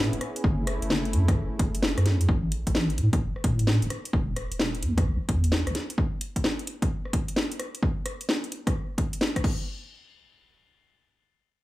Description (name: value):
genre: UK garage, two-step garage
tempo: 130 BPM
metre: 4/4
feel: swing 66% on 16ths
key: unclear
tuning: A4 = 440 Hz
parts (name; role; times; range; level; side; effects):
- warm analog pad; sustained chords; 0.0-2.3 s; A3 to G#4; -34 LUFS; equal; chorus, sidechain pumping
- deep soft wobble bass; bass; 0.0-5.7 s; E1 to A2; -25 LUFS; equal; chorus
- house drum kit; drums; 0.1-9.6 s; crash cymbal, hi-hat, rim click, snare drum; -29 LUFS; left 1 dB; overdrive
- electronic kick drum; drums; 0.4-9.6 s; none; -27 LUFS; equal; overdrive
room: little or no reverb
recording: small room ambience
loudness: -24 LUFS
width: side -17 dB against mid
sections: 0.0-9.7 A section; 9.7-11.6 B section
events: none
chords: 0.4 F#m9; 2.3 A5; 4.1 E5; 6.0 N.C.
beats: | 0.44 0.90 1.36 1.82 | 2.29 2.75 3.21 3.67 | 4.13 4.59 5.06 5.52 | 5.98 6.44 6.90 7.36 | 7.83 8.29 8.75 9.21